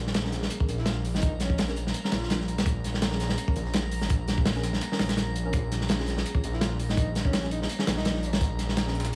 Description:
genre	drum and bass, jungle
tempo	167 BPM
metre	4/4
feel	swing 54% on 16ths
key	Bb minor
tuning	A4 = 440 Hz
part	detuned saw bass	bass	0.0-9.1 s	Ab1 to Bb1	-32 LUFS	equal	none
part	drifting glass-harmonics texture	texture	0.5-9.2 s	Bb5	-46 LUFS	equal	chorus, built-in reverb
part	breakbeat sampler-style drum kit	drums	0.1-9.2 s	hi-hat, snare drum	-45 LUFS	equal	overdrive, high-pass filter on hats, high-pass filter on snare, high-pass filter on room
part	crunchy breakbeat drum kit	drums	0.1-8.9 s	hi-hat, kick drum, snare drum	-30 LUFS	equal	none
part	deep mellow chord stab	stabs	0.2-9.2 s	Db4 to Bb4	-41 LUFS	equal	chorus, dub echo
part	warm alto saxophone	melody	0.8-2.4, 6.5-8.5 s	Db4 to F4	-40 LUFS	equal	dub echo
room	small room reverb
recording	vinyl crackle, studio ambience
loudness	-27 LUFS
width	mono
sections	0.0-9.2 A section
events	none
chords	0.0 Bbm7; 5.5 Db

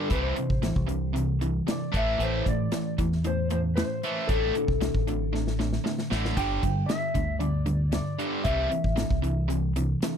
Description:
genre	classic rock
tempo	115 BPM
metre	4/4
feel	straight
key	unclear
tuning	A4 = 440 Hz
part	electric slide guitar	melody	0.0-9.4 s	A4 to G5	-32 LUFS	left 3 dB	slapback echo
part	cranked stack guitar	riff	0.0-10.2 s	G2 to A3	-28 LUFS	right 1 dB	overdrive
part	deep dub fingered electric bass	bass	0.1-9.9 s	G1 to A2	-28 LUFS	equal	none
part	big rock drum kit	drums	0.1-10.1 s	crash cymbal, hi-hat, kick drum, snare drum	-30 LUFS	equal	none
room	little or no reverb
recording	dry, close 1970s-style studio recording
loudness	-24 LUFS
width	side -8 dB against mid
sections	0.0-10.2 A section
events	drum fill 5.3-6.4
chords	0.1 C; 1.9 Am; 4.3 D5/A; 6.4 G5; 8.5 C

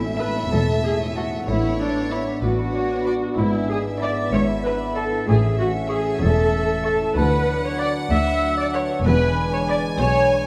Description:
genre	cinematic, playful, whimsical film cue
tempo	63 BPM (dotted quarters)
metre	6/8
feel	straight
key	A major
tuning	A4 = 437 Hz
part	warm chamber violin section	melody	0.0-10.5 s	B4 to G#5	-32 LUFS	equal	none
part	clear clarinet	second line	0.0-10.5 s	D4 to E5	-30 LUFS	equal	none
part	small flute group	second line	0.0-10.5 s	D5 to E6	-34 LUFS	equal	none
part	warm French horn section	sustained chords	0.0-10.5 s	F#3 to E4	-32 LUFS	equal	none
part	concert harp	arpeggios	0.0-10.5 s	G#2 to B5	-32 LUFS	equal	none
part	rich chamber double bass section	bass	0.0-10.5 s	E1 to D2	-27 LUFS	equal	none
part	warm chamber cello section	bass	0.0-10.5 s	D2 to B2	-29 LUFS	equal	none
part	rich chamber violin section	second line	0.2-9.9 s	D5 to C#6	-39 LUFS	equal	none
part	rich chamber viola section	accompaniment	0.2-10.5 s	D4 to E5	-27 LUFS	equal	none
room	moderate scoring stage reverb, RT60 2.0 s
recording	none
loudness	-21 LUFS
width	mono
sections	0.0-10.5 A section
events	none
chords	0.0 A; 1.5 Bm7/A; 3.4 E7/G#; 5.3 A; 7.2 Bm/D; 9.1 E7

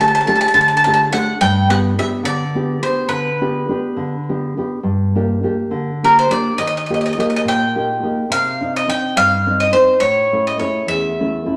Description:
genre	italian folk, Italian serenade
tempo	70 BPM (dotted quarters)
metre	6/8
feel	straight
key	G major, G minor from 4.8 s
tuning	A4 = 438 Hz
part	bowl-back mandolin	melody	0.0-11.6 s	Bb4 to A5	-18 LUFS	equal	none
part	nylon-string guitar	accompaniment	0.0-11.6 s	E2 to G4	-21 LUFS	equal	none
room	wet large studio reverb, RT60 1.1 s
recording	none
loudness	-17 LUFS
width	mono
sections	0.0-4.8 A section; 4.8-11.6 B section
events	none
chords	0.0 Gsus2; 1.4 G; 4.8 Gm; 6.6 Eb; 8.3 Cmadd9; 10.0 A

